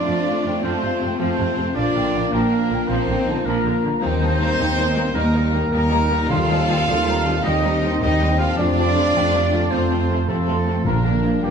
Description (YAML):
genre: cinematic, heroic adventure film score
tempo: 106 BPM (dotted quarters)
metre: 12/8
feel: straight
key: unclear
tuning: A4 = 440 Hz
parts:
  - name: rich symphonic violin section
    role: melody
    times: 0.0-11.5 s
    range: Bb3 to A4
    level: -29 LUFS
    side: left 3 dB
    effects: none
  - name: mellow large flute ensemble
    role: second line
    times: 0.0-11.5 s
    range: D5 to C6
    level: -29 LUFS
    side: left 3 dB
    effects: none
  - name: warm clarinet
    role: second line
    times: 0.0-11.5 s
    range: G4 to F5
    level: -29 LUFS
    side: right 1 dB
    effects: none
  - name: warm symphonic violin section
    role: second line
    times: 0.0-11.5 s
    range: G3 to C4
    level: -33 LUFS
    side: left 4 dB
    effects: none
  - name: rich symphonic viola section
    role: accompaniment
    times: 0.0-11.5 s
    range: C3 to A3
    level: -30 LUFS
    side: right 1 dB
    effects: none
  - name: dark French horn section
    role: sustained chords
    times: 0.0-11.5 s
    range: Bb3 to G4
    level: -28 LUFS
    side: left 6 dB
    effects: none
  - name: warm trombone section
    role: sustained chords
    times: 0.0-11.5 s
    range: Eb3 to Bb3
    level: -30 LUFS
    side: right 3 dB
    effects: none
  - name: concert harp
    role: arpeggios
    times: 0.0-11.5 s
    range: Bb2 to F5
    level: -31 LUFS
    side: left 9 dB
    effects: none
  - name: warm trumpet section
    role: stabs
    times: 0.0-11.5 s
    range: G4 to F5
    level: -25 LUFS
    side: right 2 dB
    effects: none
  - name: rich symphonic cello section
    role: bass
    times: 0.0-11.5 s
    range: G3 to F4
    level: -25 LUFS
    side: right 2 dB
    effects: none
  - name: rich studio double bass section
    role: bass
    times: 0.1-11.5 s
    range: Bb1 to F2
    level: -23 LUFS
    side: right 2 dB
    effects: none
  - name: timpani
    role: percussion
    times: 6.3-6.8, 10.8-11.4 s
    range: Bb2 to Eb3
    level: -26 LUFS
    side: left 1 dB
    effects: none
room: wet recital hall reverb, RT60 1.8 s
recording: dark, warm production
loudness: -17 LUFS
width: side -6 dB against mid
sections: 0.0-11.5 A section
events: none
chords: 0.0 F; 1.8 Bb; 4.0 Eb; 6.3 Cm/Eb; 8.6 F; 10.9 Bb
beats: 0.07 0.63 1.20 | 1.77 2.34 2.90 3.47 | 4.04 4.60 5.17 5.73 | 6.31 6.88 7.45 8.01 | 8.58 9.15 9.72 10.29 | 10.86 11.44